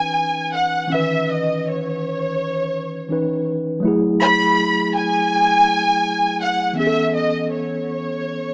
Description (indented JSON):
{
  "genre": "soul",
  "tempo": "82 BPM",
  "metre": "4/4",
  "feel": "swing 58% on 16ths",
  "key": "C# minor",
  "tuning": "A4 = 437 Hz",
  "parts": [
    { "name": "dark studio violin section", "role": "melody", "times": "0.0-8.5 s", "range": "C#5 to B5", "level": "-18 LUFS", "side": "equal", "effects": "none" },
    { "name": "mellow tine electric piano", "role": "accompaniment", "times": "0.0-8.5 s", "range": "D#3 to B4", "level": "-21 LUFS", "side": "equal", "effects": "medium stereo tremolo" }
  ],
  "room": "light reverb",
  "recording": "small speaker sound",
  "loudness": "-16 LUFS",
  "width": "side -37 dB against mid",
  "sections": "0.0-8.5 A section",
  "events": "none",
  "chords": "0.0 C#m9; 3.8 F#m9; 6.8 B9sus4",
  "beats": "0.17 | 0.91 1.64 2.37 3.11 | 3.84 4.57 5.30 6.04 | 6.77 7.50 8.23"
}